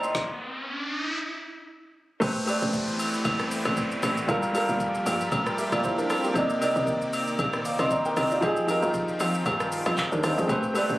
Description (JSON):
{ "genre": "amapiano", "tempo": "116 BPM", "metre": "4/4", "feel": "swing 55% on 16ths", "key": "A phrygian", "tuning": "A4 = 441 Hz", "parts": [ { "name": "warm grand piano", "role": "accompaniment", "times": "0.0-11.0 s", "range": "C3 to D6", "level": "-26 LUFS", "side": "equal", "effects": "none" }, { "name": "lush unison pad", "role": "sustained chords", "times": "0.0-11.0 s", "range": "C3 to G5", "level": "-33 LUFS", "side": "equal", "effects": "chorus" }, { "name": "deep house drum kit", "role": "drums", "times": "0.0-11.0 s", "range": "handclaps, hi-hat, kick drum, rim click, shaker, snare drum", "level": "-34 LUFS", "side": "equal", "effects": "none" }, { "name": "riser and downlifter", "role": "sound effects", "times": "0.0-6.4 s", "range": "none", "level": "-34 LUFS", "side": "equal", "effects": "none" }, { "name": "tight log drum bass", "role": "bass", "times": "2.2-11.0 s", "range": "G1 to F3", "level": "-31 LUFS", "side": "equal", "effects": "none" }, { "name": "agogo bells", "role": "percussion", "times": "2.2-10.9 s", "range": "none", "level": "-31 LUFS", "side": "equal", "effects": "none" } ], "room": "light reverb, digital ambience", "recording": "recorded on a phone in the room, club reverb, compression", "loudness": "-24 LUFS", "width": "side -17 dB against mid", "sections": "0.0-2.2 A section; 2.2-11.0 B section", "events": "riser 0.0-2.2; stop 0.1-2.2; drop 2.2-11.0", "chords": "0.1 N.C.; 2.2 Am9; 4.3 Gm9; 6.4 Cm9; 8.4 Fm9" }